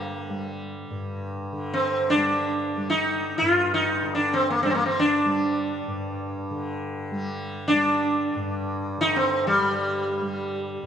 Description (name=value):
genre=indian classical, Hindustani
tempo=free time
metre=none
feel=none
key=G raga bhairavi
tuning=A4 = 439 Hz
part: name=sitar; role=melody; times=0.0-10.9 s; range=G3 to F4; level=-22 LUFS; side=equal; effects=none
part: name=tanpura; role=drone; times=0.0-10.9 s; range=G2 to G3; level=-31 LUFS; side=equal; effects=none
room=moderate recital hall reverb, RT60 1.7 s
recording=dark, warm production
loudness=-22 LUFS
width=side -8 dB against mid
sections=0.0-10.9 A section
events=none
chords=none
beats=free time